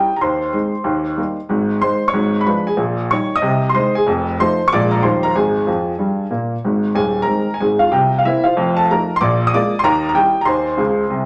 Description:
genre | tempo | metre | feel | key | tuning
jazz, stride piano | 187 BPM | 4/4 | swing 62% on 8ths | Ab major | A4 = 440 Hz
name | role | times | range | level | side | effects
clear upright piano | solo | 0.0-11.3 s | Eb1 to Eb6 | -17 LUFS | equal | none
room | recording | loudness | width
wet studio reverb, RT60 0.8 s | none | -17 LUFS | mono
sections
0.0-6.6 A section; 6.6-11.3 A section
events
upright piano fill 5.7-6.6, 10.8-11.3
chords
0.2 Ab/Eb; 0.9 Eb; 1.5 Ab; 2.1 Abdim7; 2.8 Eb7/Bb; 3.4 Ab/C; 4.1 F7; 4.7 Bb7; 5.0 Eb13; 5.4 Fmadd9/Ab; 6.6 Ab; 7.9 C7; 8.6 F7; 9.2 Bb7; 9.8 Eb7b9; 10.5 Ab/Eb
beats
| 0.22 0.54 0.86 1.18 | 1.50 1.82 2.15 2.47 | 2.79 3.11 3.43 3.75 | 4.07 4.39 4.71 5.03 | 5.36 5.68 6.00 6.32 | 6.64 6.96 7.28 7.60 | 7.92 8.24 8.56 8.88 | 9.20 9.52 9.84 10.16 | 10.48 10.79 11.11

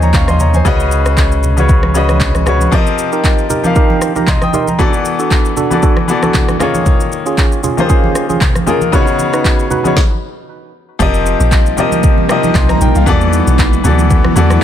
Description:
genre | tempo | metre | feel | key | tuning
amapiano | 116 BPM | 4/4 | swing 55% on 16ths | unclear | A4 = 440 Hz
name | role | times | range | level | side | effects
bright concert grand piano | accompaniment | 0.0-14.6 s | Db3 to Eb6 | -15 LUFS | left 4 dB | none
punchy sub bass | bass | 0.0-2.7 s | Db2 to Eb2 | -13 LUFS | equal | none
deep house drum kit | drums | 0.0-14.6 s | handclaps, kick drum, rim click, shaker, snare drum | -13 LUFS | equal | none
congas | percussion | 0.0-14.6 s | none | -20 LUFS | right 2 dB | none
percussive organ stab | stabs | 3.1-9.9 s | Db4 to Cb5 | -18 LUFS | right 4 dB | chorus, ping-pong delay
granular cloud pad | sustained chords | 11.6-14.6 s | C3 to E4 | -17 LUFS | right 1 dB | built-in reverb
deep log drum bass | bass | 11.0-14.6 s | F1 to E2 | -13 LUFS | equal | none
room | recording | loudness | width
little or no reverb | dense, heavily limited modern master | -10 LUFS | side -10 dB against mid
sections
0.0-11.0 A section; 11.0-14.6 B section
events
stop 10.0-11.0; drop 11.0-14.6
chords
0.0 Eb9sus4; 0.7 Db9sus4; 2.7 F9sus4; 4.8 E9sus4; 6.6 Eb9sus4; 8.9 Db9sus4; 11.0 F9sus4; 13.1 E9sus4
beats
0.14 | 0.66 1.17 1.69 2.21 | 2.72 3.24 3.76 4.28 | 4.79 5.31 5.83 6.34 | 6.86 7.38 7.90 8.41 | 8.93 9.45 9.96 10.48 | 11.00 11.52 12.03 12.55 | 13.07 13.59 14.10 14.62

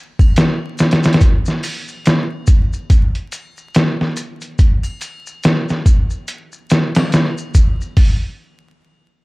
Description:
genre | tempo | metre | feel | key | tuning
trip hop | 71 BPM | 4/4 | swing 60% on 16ths | none | none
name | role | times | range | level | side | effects
trip hop sampler-style drum kit | drums | 0.2-8.2 s | hi-hat, kick drum, snare drum | -12 LUFS | equal | overdrive
triangle and maracas | percussion | 0.2-7.9 s | none | -34 LUFS | left 3 dB | none
room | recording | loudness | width
digital ambience | dark, warm production, vinyl crackle | -13 LUFS | side -24 dB against mid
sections
0.0-8.0 A section; 8.0-9.2 B section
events
none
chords
none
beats
0.36 | 1.21 2.06 2.90 3.75 | 4.59 5.43 6.28 7.12 | 7.97

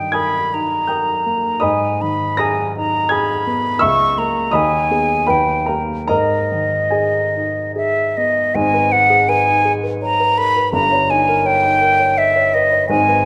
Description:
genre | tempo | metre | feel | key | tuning
classical, romantic duo for flute and grand piano | 72-86 BPM | 3/4 | rubato | G# minor | A4 = 438 Hz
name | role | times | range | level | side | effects
hollow concert flute | melody | 0.0-13.2 s | D#5 to C#6 | -18 LUFS | equal | none
dark grand piano | accompaniment | 0.0-13.3 s | G1 to A#6 | -21 LUFS | equal | none
room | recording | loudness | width
moderate concert hall reverb, RT60 2.0 s | none | -16 LUFS | mono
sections
0.0-8.6 A section; 8.6-13.3 B section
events
none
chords
0.0 D#/G; 1.6 G#m; 3.8 A#dim/C#; 4.5 G#m/D#; 5.3 D#; 6.1 G#m; 10.7 D#7/G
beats
0.15 0.90 | 1.62 2.40 3.11 | 3.82 4.53 5.29 | 6.10 6.94 7.76 | 8.56 9.28 10.02 | 10.74 11.46 12.18 | 12.90

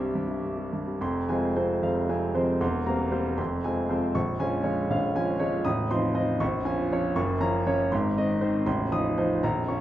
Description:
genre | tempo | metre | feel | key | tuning
classical, romantic character piece for solo piano | 68-82 BPM (dotted quarters) | 6/8 | rubato | F minor | A4 = 436 Hz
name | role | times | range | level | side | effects
clear concert grand piano | solo | 0.0-9.8 s | A0 to Eb6 | -24 LUFS | equal | none
room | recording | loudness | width
wet recital hall reverb, RT60 1.4 s | none | -24 LUFS | side -13 dB against mid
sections
0.0-1.0 A section; 1.0-9.8 B section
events
none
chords
0.0 C; 1.0 Fm; 2.6 C7/E; 3.4 Fm; 4.2 Bbm7; 5.7 F7/A; 6.4 Bbm7; 7.2 Gbmaj7; 7.9 Ab; 8.7 F7/A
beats
0.15 | 1.01 1.82 | 2.61 3.39 | 4.15 4.91 | 5.67 6.41 | 7.16 7.92 | 8.66 9.43

